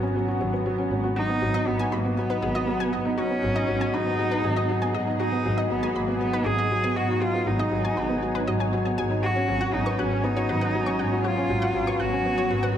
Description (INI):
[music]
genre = piano and strings electronica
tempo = 119 BPM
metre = 4/4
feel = straight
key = unclear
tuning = A4 = 441 Hz
[part]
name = granular cloud pad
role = sustained chords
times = 0.0-12.8 s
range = F#3 to G#5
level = -32 LUFS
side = right 2 dB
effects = built-in reverb
[part]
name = felt-muted upright piano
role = riff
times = 0.0-12.8 s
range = F#3 to B4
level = -27 LUFS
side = equal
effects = digital delay
[part]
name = rich studio double bass section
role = bass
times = 0.0-12.7 s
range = G#1 to G#2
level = -29 LUFS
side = equal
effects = none
[part]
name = warm cello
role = melody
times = 1.2-12.8 s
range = A#3 to G#4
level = -28 LUFS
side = equal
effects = digital delay
[part]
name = analog pluck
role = arpeggios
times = 1.2-12.7 s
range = F#4 to F#6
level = -34 LUFS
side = left 2 dB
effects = chorus, digital delay
[sound]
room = moderate lush hall reverb, RT60 1.6 s, studio reverb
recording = none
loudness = -22 LUFS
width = side -9 dB against mid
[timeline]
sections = 0.0-12.8 A section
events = none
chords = 0.0 G#m7; 9.2 Bsus2/G#